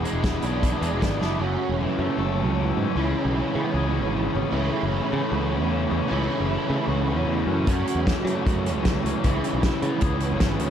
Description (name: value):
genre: indie rock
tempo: 153 BPM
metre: 4/4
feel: straight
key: A major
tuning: A4 = 439 Hz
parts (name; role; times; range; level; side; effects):
- overdriven electric guitar; riff; 0.0-10.7 s; E2 to F#4; -26 LUFS; right 7 dB; ensemble chorus
- raw garage guitar; riff; 0.0-10.7 s; F#2 to A4; -28 LUFS; left 9 dB; overdrive
- modern bright picked electric bass; bass; 0.0-10.7 s; E1 to F#3; -27 LUFS; left 1 dB; none
- loose indie drum kit; drums; 0.1-1.3, 7.7-10.7 s; hi-hat, kick drum, snare drum; -25 LUFS; equal; none
room: light reverb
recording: dark, warm production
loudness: -21 LUFS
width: side -9 dB against mid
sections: 0.0-1.4 A section; 1.4-10.7 B section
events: drum fill 1.2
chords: 0.0 E7; 1.4 F#m7; 3.0 C#m7; 4.5 A6; 7.7 F#m7; 9.2 C#m7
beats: 0.24 0.63 1.02 | 1.41 1.80 2.20 2.59 | 2.98 3.37 3.76 4.15 | 4.55 4.94 5.33 5.72 | 6.11 6.50 6.90 7.29 | 7.68 8.07 8.46 8.85 | 9.24 9.63 10.03 10.42